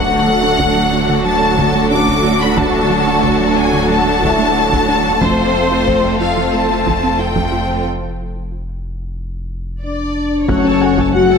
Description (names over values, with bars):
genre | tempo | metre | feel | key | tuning
cinematic, hybrid orchestral and electronic film score | 91 BPM | 4/4 | straight | unclear | A4 = 440 Hz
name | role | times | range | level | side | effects
bright symphonic violin section | melody | 0.0-7.9 s | C5 to D6 | -17 LUFS | left 3 dB | none
warm symphonic violin section | second line | 0.0-11.4 s | F4 to F#5 | -21 LUFS | left 1 dB | none
rich symphonic viola section | accompaniment | 0.0-11.4 s | F#3 to A5 | -20 LUFS | right 1 dB | none
brassy analog pad | sustained chords | 0.0-11.4 s | D3 to C#5 | -20 LUFS | equal | chorus
soft round pluck | arpeggios | 0.0-11.4 s | D3 to F4 | -24 LUFS | right 5 dB | chorus, ping-pong delay
pure sine sub bass | bass | 0.0-11.4 s | D1 to F#1 | -27 LUFS | equal | none
warm symphonic cello section | bass | 0.0-11.4 s | D2 to F#2 | -21 LUFS | right 4 dB | none
felt-muted upright piano | texture | 0.0-11.4 s | A3 to G#5 | -29 LUFS | left 1 dB | none
taiko ensemble | drums | 0.6-11.4 s | none | -24 LUFS | left 1 dB | none
dark French horn section | sustained chords | 9.8-11.4 s | C#4 to F#4 | -14 LUFS | left 7 dB | none
clear trombone section | sustained chords | 10.5-10.7 s | F#3 to A3 | -25 LUFS | right 5 dB | none
rich symphonic double bass section | bass | 10.5-11.4 s | F#1 | -22 LUFS | right 4 dB | none
room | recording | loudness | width
moderate concert hall reverb, RT60 1.9 s | none | -12 LUFS | side -6 dB against mid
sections
0.0-10.5 A section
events
break 7.8-10.5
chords
0.0 D; 5.2 F; 10.5 F#m